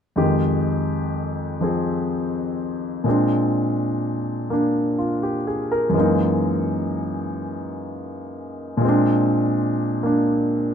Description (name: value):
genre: solo jazz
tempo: 83 BPM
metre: 4/4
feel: swing 69% on 8ths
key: unclear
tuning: A4 = 440 Hz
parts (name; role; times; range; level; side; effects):
- warm concert grand piano; solo; 0.2-10.7 s; F2 to Bb4; -20 LUFS; equal; none
room: light reverb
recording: none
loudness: -19 LUFS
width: side -8 dB against mid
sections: 0.2-10.7 A section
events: none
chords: 0.2 Fm9; 3.1 Bb9; 5.9 Gb13; 8.8 Bb9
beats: | 0.16 0.88 1.61 2.33 | 3.05 3.78 4.50 5.22 | 5.95 6.67 7.39 8.12 | 8.84 9.56 10.28